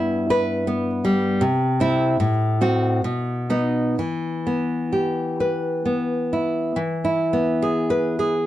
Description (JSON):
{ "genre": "romantic piece for solo classical guitar", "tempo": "62-80 BPM", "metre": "3/4", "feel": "rubato", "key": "E minor", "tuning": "A4 = 437 Hz", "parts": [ { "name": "nylon-string guitar", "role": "solo", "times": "0.0-8.5 s", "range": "G2 to B4", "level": "-19 LUFS", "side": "equal", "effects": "none" } ], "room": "light reverb", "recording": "dark, warm production", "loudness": "-19 LUFS", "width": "side -13 dB against mid", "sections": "0.0-6.8 A section; 6.8-8.5 B section", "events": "none", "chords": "0.0 Em/G; 1.4 C; 2.2 F#dim/A; 3.0 B; 4.0 Em; 6.8 E" }